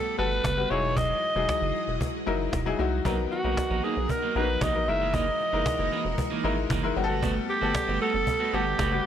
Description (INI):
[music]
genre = early-eighties boogie funk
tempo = 115 BPM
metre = 4/4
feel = straight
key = unclear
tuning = A4 = 442 Hz
[part]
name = growling alto saxophone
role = melody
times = 0.0-9.1 s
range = F#4 to E5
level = -28 LUFS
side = right 1 dB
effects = tape echo
[part]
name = string machine, full ensemble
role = sustained chords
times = 0.0-9.0 s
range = D#3 to D#5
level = -35 LUFS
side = right 1 dB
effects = ensemble chorus
[part]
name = cajon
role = drums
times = 0.1-9.0 s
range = none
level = -32 LUFS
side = equal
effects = none
[part]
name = clear grand piano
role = accompaniment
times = 0.2-9.0 s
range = F#3 to F#5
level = -31 LUFS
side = left 6 dB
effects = none
[part]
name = rubbery square bass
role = bass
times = 0.2-9.0 s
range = E1 to C2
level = -30 LUFS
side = equal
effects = none
[part]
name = clean electric guitar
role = riff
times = 3.0-9.0 s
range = E3 to F#4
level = -33 LUFS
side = right 6 dB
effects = lush chorus
[sound]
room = light reverb, small room reverb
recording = none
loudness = -24 LUFS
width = side -9 dB against mid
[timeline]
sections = 0.0-9.1 A section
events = none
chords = 0.0 Gmaj9; 0.7 Emaj9; 3.1 Bmaj7; 4.9 F#13; 7.0 Gmaj9